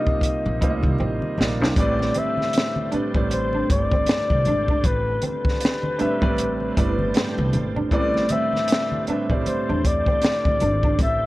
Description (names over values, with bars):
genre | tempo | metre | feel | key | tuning
R&B, neo-soul | 78 BPM | 4/4 | swing 59% on 16ths | A minor | A4 = 440 Hz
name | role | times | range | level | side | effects
breathy flugelhorn | melody | 0.0-11.3 s | B4 to E5 | -24 LUFS | left 2 dB | none
clear concert grand piano | accompaniment | 0.0-11.3 s | A2 to E5 | -26 LUFS | right 2 dB | none
compact cocktail drum kit | drums | 0.1-11.2 s | hi-hat, kick drum, snare drum | -22 LUFS | equal | none
congas | percussion | 0.1-11.0 s | none | -33 LUFS | left 1 dB | none
upright bass | bass | 0.5-11.3 s | G1 to A2 | -26 LUFS | equal | tube saturation
electric guitar through a small old amp | second line | 0.6-11.0 s | C4 to E4 | -29 LUFS | right 1 dB | ensemble chorus
tonewheel organ | sustained chords | 1.7-11.3 s | D3 to A4 | -34 LUFS | equal | fast rotary speaker, chorus vibrato
room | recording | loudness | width
light reverb | worn, warbling old tape, cassette tape, warbly pitch drift | -19 LUFS | side -18 dB against mid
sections
0.0-1.8 A section; 1.8-11.3 B section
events
drum fill 1.0-1.8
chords
0.0 Cm11; 1.8 Am11